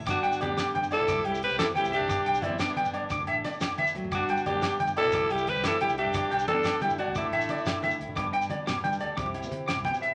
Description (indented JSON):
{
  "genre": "highlife guitar band",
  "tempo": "118 BPM (dotted quarters)",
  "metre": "12/8",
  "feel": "straight",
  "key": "G major",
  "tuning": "A4 = 444 Hz",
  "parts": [
    { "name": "picked steel-string acoustic guitar", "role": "accompaniment", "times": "0.0-10.1 s", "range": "G2 to B4", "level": "-41 LUFS", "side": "equal", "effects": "none" },
    { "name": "fingered electric bass", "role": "bass", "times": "0.0-9.9 s", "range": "G1 to D3", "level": "-43 LUFS", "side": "equal", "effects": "none" },
    { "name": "congas", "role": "percussion", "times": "0.0-10.1 s", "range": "none", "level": "-42 LUFS", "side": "equal", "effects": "none" },
    { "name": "breathy alto saxophone", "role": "melody", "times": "0.1-8.0 s", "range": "D4 to B4", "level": "-31 LUFS", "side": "equal", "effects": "none" },
    { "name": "bright trumpet", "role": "second line", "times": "0.1-8.0 s", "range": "A3 to G4", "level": "-39 LUFS", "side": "equal", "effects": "none" },
    { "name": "electric guitar at the edge of break-up", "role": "arpeggios", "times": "0.1-10.1 s", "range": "D5 to D6", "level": "-32 LUFS", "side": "equal", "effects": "none" },
    { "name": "damped 70s drum kit", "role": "drums", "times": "0.1-10.1 s", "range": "hi-hat, kick drum, snare drum", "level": "-38 LUFS", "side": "equal", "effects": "none" },
    { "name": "agogo bells", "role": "percussion", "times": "0.1-10.0 s", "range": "none", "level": "-42 LUFS", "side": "equal", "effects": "none" },
    { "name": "shekere", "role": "percussion", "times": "0.1-10.0 s", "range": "none", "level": "-44 LUFS", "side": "equal", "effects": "none" }
  ],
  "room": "moderate large studio reverb, RT60 1.1 s",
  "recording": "none",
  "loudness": "-28 LUFS",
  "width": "mono",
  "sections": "0.0-8.2 A section; 8.2-10.1 B section",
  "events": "none",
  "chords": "0.1 G; 1.1 C; 2.1 G; 3.1 Dsus2; 4.1 G; 5.1 C; 6.1 G; 7.2 Dsus2; 8.2 G; 9.2 C"
}